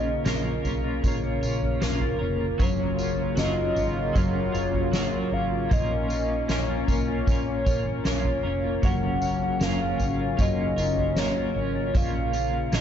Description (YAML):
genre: dream pop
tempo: 77 BPM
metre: 4/4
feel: straight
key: F# major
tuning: A4 = 439 Hz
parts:
  - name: hollow clarinet-like synth lead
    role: melody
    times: 0.0-12.8 s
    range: A#4 to F#5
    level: -30 LUFS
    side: equal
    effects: chorus, ping-pong delay
  - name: twelve-string electric guitar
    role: accompaniment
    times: 0.0-12.8 s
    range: A#2 to A#4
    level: -34 LUFS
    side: right 2 dB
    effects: tremolo, lush chorus
  - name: warm analog pad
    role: sustained chords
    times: 0.0-12.8 s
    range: C#3 to E#4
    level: -30 LUFS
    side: left 2 dB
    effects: chorus
  - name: mellow electric guitar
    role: arpeggios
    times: 0.0-12.8 s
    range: A#2 to A#4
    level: -31 LUFS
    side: left 3 dB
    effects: wide subtle chorus, ping-pong delay
  - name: vintage muted fingered electric bass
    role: bass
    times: 0.0-12.8 s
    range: E#1 to B1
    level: -31 LUFS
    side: equal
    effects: none
  - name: soft-mallet drum kit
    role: drums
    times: 0.3-12.8 s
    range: kick drum, snare drum, tambourine, toms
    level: -28 LUFS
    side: equal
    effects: none
room: light reverb, small room ambience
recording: dark, warm production, nothing above 7.7 kHz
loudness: -23 LUFS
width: side -9 dB against mid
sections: 0.0-12.8 A section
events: none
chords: 0.0 A#m; 2.6 F#maj7; 5.7 A#m; 8.8 F#maj7; 11.9 A#m